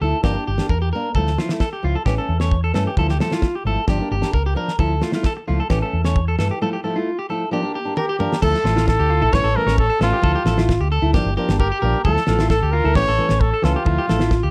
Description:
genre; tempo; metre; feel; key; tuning
highlife guitar band; 132 BPM; 4/4; straight; D harmonic minor; A4 = 440 Hz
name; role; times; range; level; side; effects
fingerpicked steel-string acoustic guitar; accompaniment; 0.0-14.3 s; E3 to E4; -27 LUFS; equal; none
electric guitar at the edge of break-up; arpeggios; 0.0-14.5 s; F4 to C#5; -28 LUFS; equal; phaser, slapback echo
fingered electric bass; bass; 0.0-14.5 s; G1 to G2; -23 LUFS; equal; none
damped 70s drum kit; drums; 0.2-14.4 s; crash cymbal, kick drum, snare drum, toms; -24 LUFS; equal; none
warm trumpet; melody; 8.0-14.5 s; F4 to C#5; -23 LUFS; equal; none
room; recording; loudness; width
light reverb; none; -19 LUFS; mono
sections
0.0-8.4 A section; 8.4-14.5 B section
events
break 6.6-8.4; drum fill 8.0-8.4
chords
0.2 Gm; 1.2 Dmadd9; 2.1 A; 3.0 Dmadd9; 3.9 Gm7; 4.8 Dmadd9; 5.7 A; 6.6 Fmaj9; 7.5 Gm7; 8.4 Dmadd9; 9.3 A; 10.2 Dmadd9; 11.1 Gm7; 12.1 Dmadd9; 13.0 A; 13.9 Dmadd9

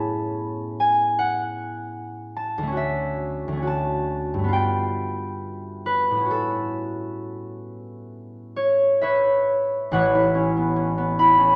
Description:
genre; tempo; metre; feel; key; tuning
classical, solo harp piece; 63-78 BPM; 4/4; rubato; A major; A4 = 440 Hz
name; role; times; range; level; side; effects
concert harp; solo; 0.0-11.6 s; A1 to C#6; -23 LUFS; equal; none
room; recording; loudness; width
moderate scoring stage reverb, RT60 1.8 s; dark, warm production; -23 LUFS; mono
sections
0.0-9.9 A section; 9.9-11.6 B section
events
none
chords
0.0 Amaj9; 2.8 Dmaj9; 4.5 G9; 6.3 A69

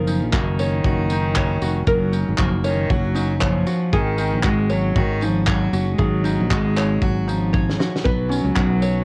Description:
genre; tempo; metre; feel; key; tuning
acoustic pop; 117 BPM; 4/4; swing 60% on 16ths; unclear; A4 = 441 Hz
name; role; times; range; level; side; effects
warm cello; second line; 0.0-9.0 s; Eb3 to Ab3; -26 LUFS; equal; cassette tape
ukulele; accompaniment; 0.0-9.0 s; Db4 to Db5; -28 LUFS; equal; cassette tape
picked steel-string acoustic guitar; arpeggios; 0.0-9.0 s; Eb3 to Gb4; -34 LUFS; equal; cassette tape
fingered electric bass; bass; 0.0-9.0 s; F1 to Db2; -24 LUFS; equal; none
loose indie drum kit; drums; 0.1-9.0 s; handclaps, kick drum, snare drum, tambourine; -25 LUFS; equal; cassette tape
room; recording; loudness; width
small room ambience; home recording on cassette; -20 LUFS; mono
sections
0.0-9.0 A section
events
drum fill 7.5-8.0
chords
0.0 Gb6; 3.9 Ab7sus4; 8.0 Cbsus2

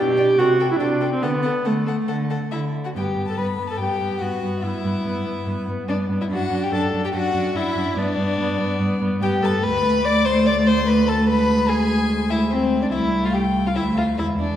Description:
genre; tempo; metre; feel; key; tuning
quick classical-period movement for string quartet; 144 BPM; 4/4; straight; G major; A4 = 439 Hz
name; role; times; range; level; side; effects
rich violin; melody; 0.0-14.6 s; C5 to D6; -29 LUFS; left 5 dB; none
rich violin; second line; 0.0-14.6 s; C4 to D5; -24 LUFS; left 2 dB; none
warm viola; accompaniment; 0.0-14.6 s; G#3 to G4; -24 LUFS; equal; none
dark cello; bass; 0.0-14.6 s; C2 to D3; -23 LUFS; right 1 dB; none
room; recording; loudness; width
wet scoring stage reverb, RT60 1.7 s; heard from further back in the room; -18 LUFS; side -11 dB against mid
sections
0.0-3.0 A section; 3.0-14.6 B section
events
none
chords
0.4 Am7/C; 1.2 D; 3.0 G; 6.3 D/F#; 8.0 G; 9.6 Bm7/D; 11.3 E7b13/D (rootless); 12.9 Am/C; 13.8 Dm

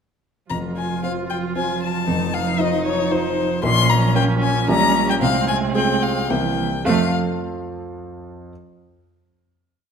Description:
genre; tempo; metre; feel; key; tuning
quick classical-period movement for piano quartet; 113 BPM; 3/4; uneven beats; F minor; A4 = 445 Hz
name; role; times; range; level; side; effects
rich violin; melody; 0.5-7.2 s; C5 to C6; -22 LUFS; left 7 dB; none
warm cello; second line; 0.5-7.2 s; E3 to Ab3; -25 LUFS; right 8 dB; none
warm grand piano; accompaniment; 0.5-8.5 s; F1 to F5; -22 LUFS; equal; none
warm viola; accompaniment; 0.5-7.2 s; A3 to F4; -27 LUFS; right 4 dB; none
room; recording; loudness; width
wet recital hall reverb, RT60 1.5 s; none; -17 LUFS; side -6 dB against mid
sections
0.5-6.8 A section; 6.8-8.5 final chord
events
none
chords
0.5 F5; 3.6 Bbm; 4.7 Gdim/Bb; 5.2 Fm/C; 6.3 C7; 6.8 F

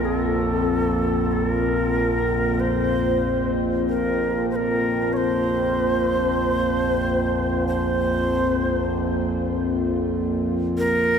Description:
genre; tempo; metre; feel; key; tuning
dark ambient drone; 48 BPM; 4/4; straight; unclear; A4 = 439 Hz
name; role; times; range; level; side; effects
bright reedy shakuhachi; melody; 0.0-11.2 s; A4 to Db5; -24 LUFS; right 1 dB; shimmer reverb, tape echo
dark analog pad; sustained chords; 0.0-11.2 s; Bb3 to F4; -24 LUFS; equal; chorus, shimmer reverb
overtone-sweeping drone; drone; 0.0-11.2 s; Bb1 to F2; -26 LUFS; left 1 dB; chorus, built-in reverb
room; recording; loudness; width
wet plate reverb, RT60 3.3 s; echo-heavy mix; -20 LUFS; side -7 dB against mid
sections
0.0-11.2 A section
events
none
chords
0.0 Bbsus2

